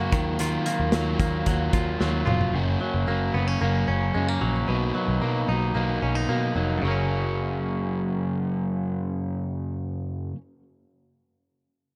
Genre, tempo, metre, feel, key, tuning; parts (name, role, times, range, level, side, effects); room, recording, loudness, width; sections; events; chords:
jangly indie pop; 112 BPM; 4/4; straight; F# major; A4 = 440 Hz
crunchy overdriven guitar; accompaniment; 0.0-10.4 s; F#2 to F#4; -30 LUFS; equal
direct-recorded clean electric guitar; arpeggios; 0.0-10.4 s; F#2 to F#4; -31 LUFS; equal; delay
vintage muted picked electric bass; bass; 0.0-10.0 s; E#1 to B2; -29 LUFS; equal
modern studio drum kit; drums; 0.1-2.5 s; hi-hat, kick drum, snare drum, toms; -29 LUFS; equal
little or no reverb; -25 LUFS; mono
0.0-2.5 A section; 2.5-6.8 B section; 6.8-11.1 C section
drum fill 2.0-2.5
0.1 D#madd9; 2.5 F#; 4.7 Bmaj7; 6.8 F#